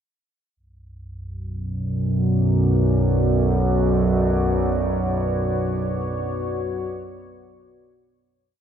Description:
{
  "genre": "dark ambient drone",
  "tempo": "free time",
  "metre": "none",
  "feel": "none",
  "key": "B minor",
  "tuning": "A4 = 440 Hz",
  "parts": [
    { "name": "deep dark ambient pad", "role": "sustained chords", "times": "2.2-8.4 s", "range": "B3 to D5", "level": "-28 LUFS", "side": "left 1 dB", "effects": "chorus, built-in reverb" },
    { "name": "analog drone", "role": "drone", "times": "1.2-8.5 s", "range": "B1 to F#2", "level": "-20 LUFS", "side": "right 1 dB", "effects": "chorus" }
  ],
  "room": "moderate spring reverb, RT60 2.3 s",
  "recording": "none",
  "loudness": "-19 LUFS",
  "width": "side -8 dB against mid",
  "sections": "0.6-8.4 A section",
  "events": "fade-in on ambient pad 0.6-8.4; fade-out 4.5-8.4",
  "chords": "0.6 Bm",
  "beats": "free time"
}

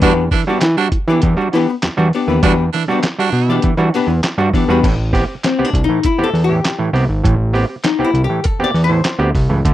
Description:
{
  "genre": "funk",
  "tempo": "100 BPM",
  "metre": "4/4",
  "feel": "straight",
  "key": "A dorian",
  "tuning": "A4 = 440 Hz",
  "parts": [
    { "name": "growling baritone saxophone", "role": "second line", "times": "0.0-3.6 s", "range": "D4", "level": "-20 LUFS", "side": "right 12 dB", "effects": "none" },
    { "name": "archtop guitar, miked and amplified", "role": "accompaniment", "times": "0.0-9.4 s", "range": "B3 to D5", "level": "-18 LUFS", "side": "left 6 dB", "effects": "none" },
    { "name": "overdriven clav", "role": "stabs", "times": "0.0-9.7 s", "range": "A2 to G4", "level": "-18 LUFS", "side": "right 3 dB", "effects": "none" },
    { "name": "fat analog bass", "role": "bass", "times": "0.0-9.7 s", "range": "G#1 to E3", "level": "-15 LUFS", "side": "equal", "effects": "none" },
    { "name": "lo-fi sampler-style drum kit", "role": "drums", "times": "0.0-9.7 s", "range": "crash cymbal, handclaps, hi-hat, kick drum, snare drum", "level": "-18 LUFS", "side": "equal", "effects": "none" }
  ],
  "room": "little or no reverb",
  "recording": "dry, close 1970s-style studio recording",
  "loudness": "-13 LUFS",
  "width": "side -13 dB against mid",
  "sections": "0.0-4.8 A section; 4.8-9.7 B section",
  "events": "hollow-body jazz guitar solo 4.8-9.7",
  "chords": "0.0 Em7; 4.8 Am7",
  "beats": "| 0.03 0.63 1.23 1.83 | 2.43 3.03 3.63 4.24 | 4.84 5.44 6.04 6.64 | 7.24 7.85 8.45 9.05 | 9.65"
}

